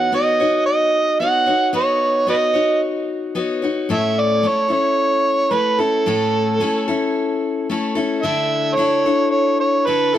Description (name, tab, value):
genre	rock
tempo	111 BPM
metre	4/4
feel	straight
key	A major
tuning	A4 = 439 Hz
part	overdriven harmonica	melody	0.0-10.2 s	A4 to F#5	-17 LUFS	right 2 dB	none
part	picked steel-string acoustic guitar	accompaniment	0.0-10.2 s	A2 to C#5	-20 LUFS	left 4 dB	none
room	light reverb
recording	none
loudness	-16 LUFS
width	side -11 dB against mid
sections	0.0-3.9 A section; 3.9-10.2 A section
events	none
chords	0.0 Badd9; 3.9 A; 8.2 Dsus2